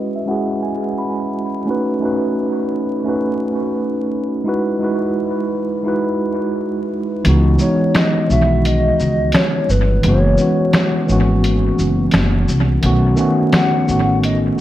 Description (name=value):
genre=lo-fi hip hop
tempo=86 BPM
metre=4/4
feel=swing 64% on 16ths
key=C# minor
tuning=A4 = 441 Hz
part: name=mellow tine electric piano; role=accompaniment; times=0.0-14.6 s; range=D#3 to B5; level=-17 LUFS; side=equal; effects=medium stereo tremolo, cassette tape, low-pass filter, analog delay
part: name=lo-fi sampler-style drum kit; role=drums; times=7.2-14.4 s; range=finger snaps, hi-hat, shaker, snare drum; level=-19 LUFS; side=equal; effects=vintage 12-bit sampler grit, analog delay
part: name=upright bass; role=bass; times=7.3-14.6 s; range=F#1 to C#2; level=-16 LUFS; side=equal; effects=none
part: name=hollow clarinet-like synth lead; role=melody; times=7.6-14.4 s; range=B4 to F#5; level=-20 LUFS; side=left 2 dB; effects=chorus, low-pass filter, analog delay
room=light reverb, digital ambience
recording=echo-heavy mix, vinyl crackle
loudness=-14 LUFS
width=side -13 dB against mid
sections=0.0-7.2 A section; 7.2-14.6 B section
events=break 0.0-4.5; tine electric piano fill 0.0-1.7; filter sweep 0.0-7.2; kick muted 7.2-14.6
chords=0.0 F#9sus4; 1.7 B7; 4.5 Emaj9; 7.2 C#m11; 10.0 F#9sus4; 12.8 B7